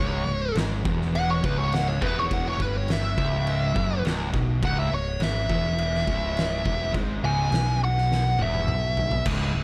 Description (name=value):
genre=stoner and doom metal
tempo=104 BPM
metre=4/4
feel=straight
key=C# minor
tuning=A4 = 440 Hz
part: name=fuzz lead guitar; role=melody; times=0.0-9.2 s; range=B4 to G#5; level=-30 LUFS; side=equal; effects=wah, distortion, analog delay
part: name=fuzz guitar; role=riff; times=0.0-9.6 s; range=C#2 to B2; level=-30 LUFS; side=equal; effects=distortion
part: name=picked electric bass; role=bass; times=0.0-9.6 s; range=C#1 to B1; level=-32 LUFS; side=equal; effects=overdrive
part: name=oversized low-tuned drum kit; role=drums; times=0.6-9.4 s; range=crash cymbal, kick drum, snare drum, toms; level=-32 LUFS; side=equal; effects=none
room=light reverb, studio ambience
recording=none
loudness=-25 LUFS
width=mono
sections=0.0-9.3 A section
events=lead electric guitar solo 0.0-9.3; drum fill 8.1-9.3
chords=0.0 C#m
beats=0.56 1.15 1.73 | 2.31 2.89 3.47 4.05 | 4.62 5.20 5.78 6.36 | 6.94 7.52 8.10 8.67 | 9.25